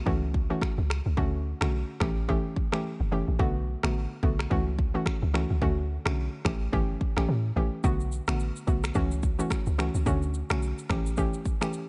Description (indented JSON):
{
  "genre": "afrobeats",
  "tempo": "108 BPM",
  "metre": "4/4",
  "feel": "swing 58% on 16ths",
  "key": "unclear",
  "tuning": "A4 = 440 Hz",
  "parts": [
    { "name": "hollow square pluck", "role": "accompaniment", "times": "0.0-11.8 s", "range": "D3 to G4", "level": "-33 LUFS", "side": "equal", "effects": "chorus" },
    { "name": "deep log drum bass", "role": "bass", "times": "0.1-11.3 s", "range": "F#1 to A2", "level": "-31 LUFS", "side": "equal", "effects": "none" },
    { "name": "deep house drum kit", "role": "drums", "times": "0.1-11.9 s", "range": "finger snaps, kick drum, rim click, shaker", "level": "-33 LUFS", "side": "equal", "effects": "none" }
  ],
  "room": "digital ambience",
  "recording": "nothing above 10.6 kHz",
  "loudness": "-28 LUFS",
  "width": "mono",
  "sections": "0.0-11.9 A section",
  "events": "break 0.0-7.8",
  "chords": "0.1 F#m7/C#; 1.2 Dmaj7; 2.0 A7; 3.4 Bm7; 4.5 F#m7/C#; 5.6 Dmaj7; 6.5 A7; 7.8 Bm7; 9.0 F#m7/C#; 10.1 Dmaj7; 10.9 A7",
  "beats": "0.06 0.62 | 1.17 1.73 2.28 2.84 | 3.40 3.95 4.51 5.06 | 5.62 6.17 6.73 7.28 | 7.84 8.40 8.95 9.51 | 10.06 10.62 11.17 11.73"
}